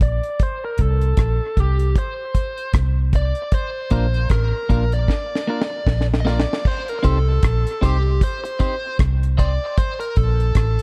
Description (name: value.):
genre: dub reggae.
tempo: 77 BPM.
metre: 4/4.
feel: swing 58% on 16ths.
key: C dorian.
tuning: A4 = 440 Hz.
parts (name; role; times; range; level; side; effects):
bluesy overdriven lead guitar; melody; 0.0-10.8 s; G4 to Eb5; -28 LUFS; equal; distortion, low-pass filter, dub echo.
vintage muted fingered electric bass; bass; 0.0-10.8 s; A1 to C2; -21 LUFS; equal; none.
deep reggae drum kit; drums; 0.0-10.8 s; crash cymbal, hi-hat, kick drum, rim click, snare drum; -22 LUFS; equal; none.
clean electric guitar; accompaniment; 3.9-9.5 s; Bb3 to C5; -29 LUFS; equal; high-pass filter, low-pass filter, dub echo.
room: small room ambience.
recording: dark, warm production.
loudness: -20 LUFS.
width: mono.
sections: 0.0-6.6 A section; 6.6-10.8 B section.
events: break 0.0-3.5; filter sweep 0.0-6.6; drum fill 5.1-6.6.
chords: 0.4 Bbmaj7sus2 (rootless); 3.5 Bb; 6.6 Cm; 9.8 Bbmaj7sus2.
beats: | 0.40 1.18 1.96 2.74 | 3.52 4.30 5.08 5.87 | 6.65 7.43 8.21 8.99 | 9.77 10.55.